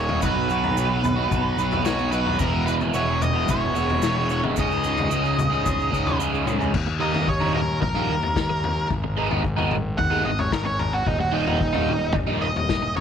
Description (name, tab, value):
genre	psychedelic rock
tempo	111 BPM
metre	4/4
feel	straight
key	unclear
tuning	A4 = 440 Hz
part	octave-fuzz lead guitar	melody	0.0-13.0 s	Eb4 to Gb5	-26 LUFS	right 2 dB	distortion, tape echo
part	crunchy overdriven guitar	riff	0.0-12.9 s	E2 to Ab4	-25 LUFS	right 1 dB	phaser
part	fuzz fingered electric bass	bass	0.0-13.0 s	Eb1 to Eb2	-26 LUFS	equal	overdrive
part	vintage drum kit	drums	0.1-13.0 s	crash cymbal, kick drum, snare drum, toms	-27 LUFS	left 4 dB	none
part	tube shaker	percussion	0.2-6.7 s	none	-42 LUFS	right 14 dB	none
room	light reverb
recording	1960s-style stereo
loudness	-20 LUFS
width	side -8 dB against mid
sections	0.0-6.7 A section; 6.7-13.0 B section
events	lead electric guitar solo 6.7-13.0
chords	0.2 B; 2.4 E; 4.6 Dbsus2; 6.7 Eb; 8.9 Abm; 11.1 Eb